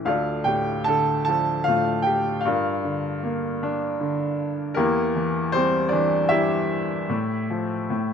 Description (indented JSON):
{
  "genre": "classical, lyrical solo piano",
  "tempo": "77 BPM",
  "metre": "3/4",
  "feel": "rubato",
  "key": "D minor",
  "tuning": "A4 = 440 Hz",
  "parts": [
    { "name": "bright upright piano", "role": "solo", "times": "0.0-8.1 s", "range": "D2 to A5", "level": "-21 LUFS", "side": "equal", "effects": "none" }
  ],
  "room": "light reverb",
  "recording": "close, detailed microphones",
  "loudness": "-21 LUFS",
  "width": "side -7 dB against mid",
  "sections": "0.0-8.1 A section",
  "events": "upright piano fill 7.9",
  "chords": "0.1 Dm; 2.5 Gm7; 4.8 Edim; 7.1 Fmaj9/A"
}